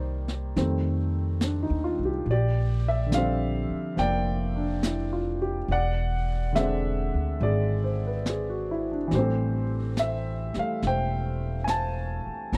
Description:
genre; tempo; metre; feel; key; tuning
jazz ballad; 70 BPM; 4/4; swing 69% on 8ths; unclear; A4 = 440 Hz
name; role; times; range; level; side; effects
warm concert grand piano; accompaniment; 0.0-12.6 s; D3 to A5; -30 LUFS; equal; none
upright bass; bass; 0.0-12.6 s; E1 to F2; -30 LUFS; equal; none
jazz brush drum kit; drums; 0.3-12.6 s; brushed snare drum, hi-hat, snare drum; -33 LUFS; equal; none
room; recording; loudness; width
studio reverb; dry, close 1970s-style studio recording; -27 LUFS; mono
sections
0.0-12.6 A section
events
none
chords
0.0 Cm9; 0.6 F9; 2.3 Bb69; 5.7 E7b13; 9.1 Am7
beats
0.55 1.41 | 2.26 3.12 3.97 4.83 | 5.68 6.54 7.39 8.25 | 9.11 9.96 10.82 11.68 | 12.53

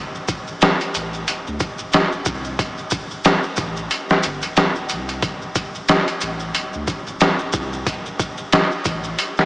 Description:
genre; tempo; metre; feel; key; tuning
trip hop; 91 BPM; 4/4; swing 58% on 16ths; unclear; A4 = 440 Hz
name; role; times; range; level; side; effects
soft dub sub bass; bass; 0.0-9.2 s; D1 to D2; -31 LUFS; equal; none
maracas; percussion; 0.2-9.5 s; none; -31 LUFS; right 1 dB; none
trip hop sampler-style drum kit; drums; 0.3-9.5 s; hi-hat, kick drum, snare drum; -19 LUFS; equal; none
room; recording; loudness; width
wet huge ambient reverb, RT60 7.6 s; dreamy mix soaked in reverb, small speaker sound; -18 LUFS; side -30 dB against mid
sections
0.0-9.5 A section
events
none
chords
none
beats
0.61 1.27 1.93 | 2.59 3.25 3.91 4.57 | 5.22 5.88 6.54 7.20 | 7.86 8.52 9.18

